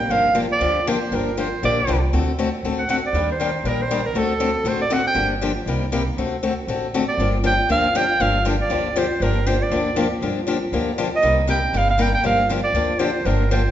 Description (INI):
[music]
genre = acoustic string swing (jazz manouche)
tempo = 237 BPM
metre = 4/4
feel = swing 55% on 8ths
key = G minor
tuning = A4 = 443 Hz
[part]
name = bright clarinet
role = melody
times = 0.0-13.7 s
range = A4 to G5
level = -21 LUFS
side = right 2 dB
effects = none
[part]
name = upright bass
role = bass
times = 0.0-13.7 s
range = G1 to Eb2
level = -25 LUFS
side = right 1 dB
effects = none
[part]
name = picked steel-string acoustic guitar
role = accompaniment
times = 0.1-13.6 s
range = C3 to A4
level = -22 LUFS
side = left 4 dB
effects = none
[sound]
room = wet recital hall reverb, RT60 1.5 s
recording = recorded in a church or concert hall, nothing above 7.8 kHz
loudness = -18 LUFS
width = side -11 dB against mid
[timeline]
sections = 0.0-7.2 A section; 7.2-13.7 A section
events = none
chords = 0.1 Gm7; 2.1 D7; 3.1 Ebmaj7; 4.1 D7; 5.2 Gm7; 5.7 Cm7; 6.2 D7; 7.2 Gm7; 11.2 Cm7; 12.2 Gm7